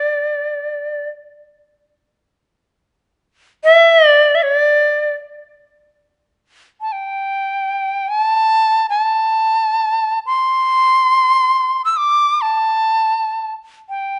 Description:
japanese traditional, Japanese chamber music; free time; D suspended pentatonic; A4 = 441 Hz
bright reedy shakuhachi; solo; 0.0-14.2 s; D5 to E6; -15 LUFS; equal
light reverb; nothing above 10.8 kHz; -15 LUFS; mono
0.0-5.4 A section; 5.4-14.2 A section
free time

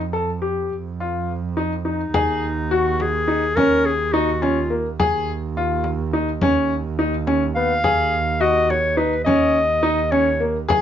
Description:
contemporary instrumental, chamber music in an uneven meter; 211 BPM (eighths); 5/8; straight; Eb minor; A4 = 440 Hz
dark double bass; bass; 0.0-10.8 s; D#2 to F2; -26 LUFS; right 5 dB
clear grand piano; arpeggios; 0.1-10.8 s; Bb3 to A4; -20 LUFS; left 2 dB
warm clarinet; melody; 1.9-4.9, 7.6-10.5 s; Eb4 to F5; -20 LUFS; left 1 dB
frame drum; percussion; 2.1-10.8 s; -25 LUFS; left 1 dB
light reverb; nothing above 7.4 kHz; -18 LUFS; side -10 dB against mid
0.0-2.1 A section; 2.1-10.8 B section
0.0 F; 0.7 Ebsus2/F; 2.1 Ab5/Eb; 3.6 Eb5; 5.0 Ebsus24; 6.4 N.C.; 7.8 Ab5/Eb; 9.3 Eb5
0.14 0.43 | 0.71 1.00 1.28 1.57 1.86 | 2.14 2.43 2.71 3.00 3.28 | 3.57 3.85 4.14 4.42 4.71 | 4.99 5.28 5.56 5.85 6.13 | 6.42 6.70 6.99 7.27 7.56 | 7.84 8.13 8.41 8.70 8.98 | 9.27 9.55 9.83 10.12 10.40 | 10.69

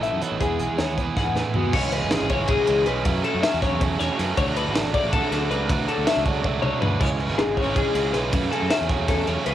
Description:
math rock and midwest emo; 318 BPM (eighths); 7/8; straight; A4 = 439 Hz
twelve-string electric guitar; accompaniment; 0.0-3.1 s; E2 to A4; -31 LUFS; right 5 dB; harmonic tremolo, cassette tape
twelve-string electric guitar; arpeggios; 0.0-9.5 s; F#4 to F#5; -25 LUFS; left 6 dB; cassette tape
biting overdriven guitar; riff; 0.0-9.5 s; F#2 to A4; -26 LUFS; right 6 dB; cassette tape
growling fingered electric bass; bass; 0.0-9.5 s; G#1 to F#2; -29 LUFS; equal; overdrive
crisp fusion drum kit; drums; 0.0-9.5 s; crash cymbal, hi-hat, kick drum, ride cymbal, snare drum, toms; -26 LUFS; equal; cassette tape
moderate booth ambience, RT60 0.2 s; home recording on cassette; -20 LUFS; side -12 dB against mid
0.0-1.7 A section; 1.7-9.5 B section
drum fill 1.2-1.7, 6.4-7.0
0.4 Emaj9; 1.7 C#m7; 3.1 F#m7; 4.4 Dmaj7; 7.0 C#m7; 8.3 F#m7
0.02 0.21 | 0.40 0.59 0.78 0.97 1.16 1.35 1.54 | 1.73 1.92 2.11 2.30 2.49 2.68 2.87 | 3.06 3.24 3.43 3.62 3.81 4.00 4.18 | 4.37 4.56 4.75 4.94 5.13 5.32 5.50 | 5.69 5.88 6.07 6.26 6.45 6.63 6.82 | 7.01 7.20 7.39 7.58 7.76 7.95 8.14 | 8.33 8.52 8.71 8.89 9.08 9.27 9.46

